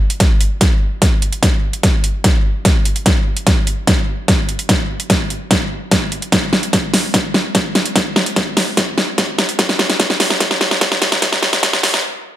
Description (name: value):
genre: heavy wobble dubstep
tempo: 147 BPM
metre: 4/4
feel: half-time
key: none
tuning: none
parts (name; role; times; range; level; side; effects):
- dubstep drum kit; drums; 0.1-12.0 s; hi-hat, snare drum; -15 LUFS; equal; none
- electronic kick drum; drums; 0.2-11.7 s; none; -16 LUFS; equal; none
room: light reverb, digital ambience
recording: high-pass filter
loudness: -13 LUFS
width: side -12 dB against mid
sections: 0.0-12.4 A section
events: build-up 0.0-12.4; drum fill 0.0-12.0; filter sweep 0.0-12.4; stop 12.0-12.4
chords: none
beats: 0.20 0.61 1.02 | 1.43 1.83 2.24 2.65 | 3.06 3.47 3.88 4.28 | 4.69 5.10 5.51 5.92 | 6.32 6.73 7.14 7.55 | 7.96 8.36 8.77 9.18 | 9.59 10.00 10.40 10.81 | 11.22 11.63